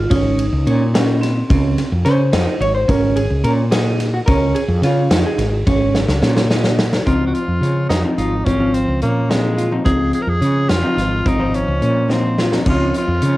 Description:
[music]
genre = progressive instrumental, band music in an uneven meter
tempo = 215 BPM (eighths)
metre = 5/8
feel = straight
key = Db major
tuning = A4 = 440 Hz
[part]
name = vibraphone with hard mallets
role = second line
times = 0.0-1.9 s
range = Cb4 to F4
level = -22 LUFS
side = left 1 dB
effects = cassette tape, plate reverb
[part]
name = vintage hollow-body jazz guitar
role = accompaniment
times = 0.0-13.4 s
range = F3 to Db5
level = -22 LUFS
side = left 1 dB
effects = cassette tape, plate reverb
[part]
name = woody fretless electric bass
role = bass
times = 0.0-13.4 s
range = Ab1 to Db3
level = -18 LUFS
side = equal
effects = none
[part]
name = clean electric guitar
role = arpeggios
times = 0.1-13.4 s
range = Db3 to F4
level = -21 LUFS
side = right 2 dB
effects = spring reverb, cassette tape, plate reverb
[part]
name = huge arena drum kit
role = drums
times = 0.1-13.3 s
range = crash cymbal, hi-hat, kick drum, ride cymbal, snare drum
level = -20 LUFS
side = equal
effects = cassette tape
[part]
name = raspy tenor saxophone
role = melody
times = 7.1-13.4 s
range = Ab3 to Bb4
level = -22 LUFS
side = equal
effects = cassette tape, plate reverb
[sound]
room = light reverb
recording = home recording on cassette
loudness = -14 LUFS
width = side -17 dB against mid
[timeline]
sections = 0.0-7.1 A section; 7.1-12.7 B section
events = hollow-body jazz guitar solo 0.0-7.1; drum fill 6.0-7.1, 12.1-12.7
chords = 0.0 Db; 7.1 Dbmaj7

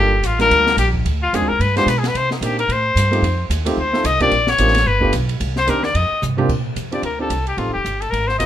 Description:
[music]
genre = jazz, small-group swing and bop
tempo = 221 BPM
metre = 4/4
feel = swing 59% on 8ths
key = Bb major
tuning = A4 = 441 Hz
[part]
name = clear trumpet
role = melody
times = 0.0-8.5 s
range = Eb4 to Eb5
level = -18 LUFS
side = left 3 dB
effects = none
[part]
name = warm grand piano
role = accompaniment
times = 0.0-8.5 s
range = G3 to Bb4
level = -23 LUFS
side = right 2 dB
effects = none
[part]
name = upright bass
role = bass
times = 0.0-8.5 s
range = Eb1 to C3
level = -20 LUFS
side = right 1 dB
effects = none
[part]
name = open jazz drum kit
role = drums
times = 0.2-8.5 s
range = crash cymbal, hi-hat, kick drum, ride cymbal, snare drum, toms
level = -26 LUFS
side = right 2 dB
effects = none
[sound]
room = light reverb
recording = minimal, uncompressed stereo recording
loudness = -15 LUFS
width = side -11 dB against mid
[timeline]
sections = 0.0-6.5 A section; 6.5-8.5 B section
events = trumpet solo 0.0-6.5; drum fill 6.2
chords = 0.0 Gm9; 1.1 Dm7b5; 1.6 G7b9; 2.1 Cm9; 3.2 F9; 4.3 Bb69; 4.9 G7; 5.4 Cm7; 5.9 Fsus2; 6.5 Bb69; 7.6 Am7b5

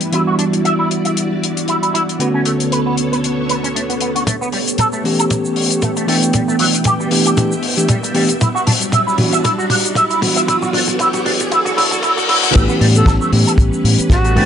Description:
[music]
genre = nu-disco, nu disco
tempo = 116 BPM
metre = 4/4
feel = swing 55% on 16ths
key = unclear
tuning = A4 = 439 Hz
[part]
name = bell-like tine electric piano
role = accompaniment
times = 0.0-14.5 s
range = D3 to G5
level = -18 LUFS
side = right 1 dB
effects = sidechain pumping, low-pass filter, slapback echo
[part]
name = string machine, full ensemble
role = sustained chords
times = 0.0-14.5 s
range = D3 to G5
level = -22 LUFS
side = equal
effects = ensemble chorus, sidechain pumping
[part]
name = damped 70s drum kit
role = drums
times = 0.0-14.5 s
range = crash cymbal, hi-hat, shaker, snare drum, toms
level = -19 LUFS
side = left 2 dB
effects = none
[part]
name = electric guitar with an envelope filter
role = riff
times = 0.1-14.4 s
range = F#3 to E5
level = -19 LUFS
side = right 2 dB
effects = ensemble chorus, low-pass filter, slapback echo
[part]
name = kick drum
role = drums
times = 4.3-14.2 s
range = none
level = -16 LUFS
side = equal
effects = high-pass filter on kick, high-pass filter on snare, high-pass filter on room
[part]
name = riser and reverse cymbal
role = sound effects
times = 6.7-12.5 s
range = none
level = -23 LUFS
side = left 2 dB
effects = none
[part]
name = fingered electric bass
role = bass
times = 12.6-14.5 s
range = A1 to A2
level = -14 LUFS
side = equal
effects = none
[part]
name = silver concert flute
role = melody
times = 12.9-14.5 s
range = F#4 to A4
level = -21 LUFS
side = right 1 dB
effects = vintage 12-bit sampler grit, tape echo
[sound]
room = light reverb, studio ambience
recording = high-pass filter, nothing above 10.7 kHz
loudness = -13 LUFS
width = side -8 dB against mid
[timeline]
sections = 0.0-4.3 A section; 4.3-12.5 B section; 12.5-14.5 C section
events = filter sweep on tine electric piano 0.0-4.3; filter sweep on string machine 0.0-4.3, 4.3-12.5; build-up 4.3-12.5; drum fill 4.3-12.5; riser 6.7-12.5; reverse cymbal 11.5-12.5; drop 12.5-14.5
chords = 0.1 Em9; 2.2 Bm9; 4.3 A9; 6.3 G6; 8.4 Em9; 10.5 Bm9; 12.5 A9

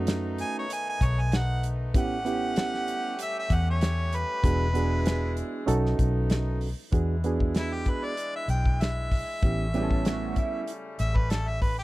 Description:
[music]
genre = straight-eighth soul blues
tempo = 96 BPM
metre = 4/4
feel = swing 53% on 16ths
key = unclear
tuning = A4 = 440 Hz
[part]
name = bright reed electric piano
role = accompaniment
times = 0.0-10.6 s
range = G3 to A4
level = -30 LUFS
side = right 4 dB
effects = none
[part]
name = warm horn section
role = sustained chords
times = 0.0-11.8 s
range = C#3 to G4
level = -40 LUFS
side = left 2 dB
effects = none
[part]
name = vintage muted fingered electric bass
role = bass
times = 0.0-11.8 s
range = E1 to F#2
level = -27 LUFS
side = equal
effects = none
[part]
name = damped 70s drum kit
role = drums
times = 0.1-11.8 s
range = hi-hat, kick drum, snare drum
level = -26 LUFS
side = equal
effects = none
[part]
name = clear harmonica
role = melody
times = 0.4-11.8 s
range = E4 to G#5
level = -31 LUFS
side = equal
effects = overdrive
[part]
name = electric guitar at the edge of break-up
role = second line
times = 9.7-10.7 s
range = A3 to A4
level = -34 LUFS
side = right 3 dB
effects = analog chorus
[sound]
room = small room ambience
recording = dry, close 1970s-style studio recording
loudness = -24 LUFS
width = side -18 dB against mid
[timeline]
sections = 0.0-6.9 A section; 6.9-11.8 B section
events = harmonica solo 0.0-6.9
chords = 0.0 B7; 1.9 A7; 4.4 E7; 5.7 B7; 6.9 E7; 9.4 A7

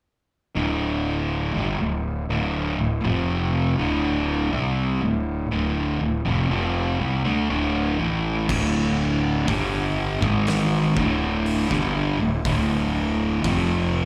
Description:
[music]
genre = stoner and doom metal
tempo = 61 BPM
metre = 4/4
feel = straight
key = D minor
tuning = A4 = 440 Hz
[part]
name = fuzz guitar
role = riff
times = 0.6-14.1 s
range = D2 to C4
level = -25 LUFS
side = equal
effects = distortion, slapback echo
[part]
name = fuzz fingered electric bass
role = bass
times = 0.6-14.1 s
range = D1 to D2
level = -28 LUFS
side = equal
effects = overdrive
[part]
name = oversized low-tuned drum kit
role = drums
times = 8.5-13.7 s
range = crash cymbal, hi-hat, kick drum, snare drum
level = -33 LUFS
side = equal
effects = none
[sound]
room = light reverb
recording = live gig heard through the venue's PA, club reverb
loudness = -23 LUFS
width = mono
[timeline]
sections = 0.6-8.5 A section; 8.5-14.1 B section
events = none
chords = 0.6 Dm

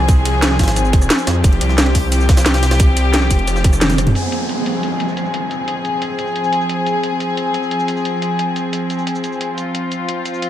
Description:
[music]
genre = dark technical drum and bass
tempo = 177 BPM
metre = 4/4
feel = straight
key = F minor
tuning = A4 = 440 Hz
[part]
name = warm studio string section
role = sustained chords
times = 0.0-10.5 s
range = F3 to Ab4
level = -19 LUFS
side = left 1 dB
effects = sidechain pumping
[part]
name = wide detuned saw bass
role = bass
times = 0.0-4.1 s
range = F1 to F2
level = -16 LUFS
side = equal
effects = chorus, overdrive, sidechain pumping
[part]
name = drum and bass drum kit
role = drums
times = 0.0-10.5 s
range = hi-hat, rim click, shaker, snare drum, toms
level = -20 LUFS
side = equal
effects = low-pass filter on hats, low-pass filter on perc, low-pass filter on snare, low-pass filter on toms, low-pass filter on room
[part]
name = electronic kick drum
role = drums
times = 0.1-3.7 s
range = none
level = -12 LUFS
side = equal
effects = none
[part]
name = jungle sampler-style drum kit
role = drums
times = 0.1-4.1 s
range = hi-hat, ride cymbal, snare drum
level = -26 LUFS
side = right 1 dB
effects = high-pass filter on cymbals, high-pass filter on snare, high-pass filter on hats, high-pass filter on room
[part]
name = downlifter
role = sound effects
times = 4.2-6.9 s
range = none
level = -24 LUFS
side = right 1 dB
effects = none
[sound]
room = light reverb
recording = none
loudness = -14 LUFS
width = side -11 dB against mid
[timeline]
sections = 0.0-4.2 A section; 4.2-10.5 B section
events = drop 0.0-4.2; drum fill 3.8-4.2; band accent 3.8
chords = 0.0 Fm

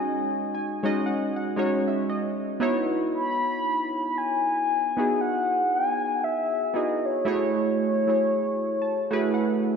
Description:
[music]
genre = R&B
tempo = 58 BPM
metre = 4/4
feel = swing 58% on 16ths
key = C# minor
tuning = A4 = 435 Hz
[part]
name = mellow horn-like synth lead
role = melody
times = 0.0-9.8 s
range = C#5 to B5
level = -26 LUFS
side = left 2 dB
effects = chorus, ping-pong delay
[part]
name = warm analog keys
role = accompaniment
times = 0.0-9.8 s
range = G#3 to A5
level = -25 LUFS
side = right 1 dB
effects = chorus
[sound]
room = wet church reverb, RT60 3.0 s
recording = dreamy mix soaked in reverb, faint mains hum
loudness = -23 LUFS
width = side -6 dB against mid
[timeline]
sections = 0.0-9.8 A section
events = synth keys fill 0.0-3.1, 8.3-9.8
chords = 0.0 G#7sus4; 2.6 C#m11; 7.3 F#m9

